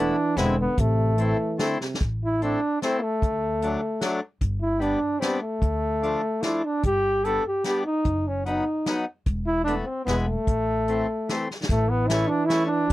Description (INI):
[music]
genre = alpine folk, alpine dance band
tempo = 148 BPM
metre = 3/4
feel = straight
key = A minor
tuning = A4 = 440 Hz
[part]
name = clear trombone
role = melody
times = 0.0-12.9 s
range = A3 to A4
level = -24 LUFS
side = equal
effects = none
[part]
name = mellow euphonium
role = second line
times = 0.0-2.0, 11.7-12.9 s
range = C3 to F#3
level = -29 LUFS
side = right 3 dB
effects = none
[part]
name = accordion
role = accompaniment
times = 0.0-12.7 s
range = E3 to E4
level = -28 LUFS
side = left 2 dB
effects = none
[part]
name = upright bass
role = bass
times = 0.0-12.9 s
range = E1 to D2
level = -27 LUFS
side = equal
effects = none
[part]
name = unplugged drum kit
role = drums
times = 0.4-12.9 s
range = hi-hat, kick drum, snare drum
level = -27 LUFS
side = equal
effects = none
[sound]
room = little or no reverb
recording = dry, close 1970s-style studio recording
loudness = -22 LUFS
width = side -16 dB against mid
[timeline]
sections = 0.0-2.0 A section; 2.0-11.7 A section; 11.7-12.9 B section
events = drum fill 1.8, 11.5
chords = 0.4 E7; 0.8 Am; 3.2 D; 4.4 G; 5.6 Dm; 6.8 G; 8.1 B/F#; 9.3 Esus4; 10.1 E; 10.5 Am; 11.7 A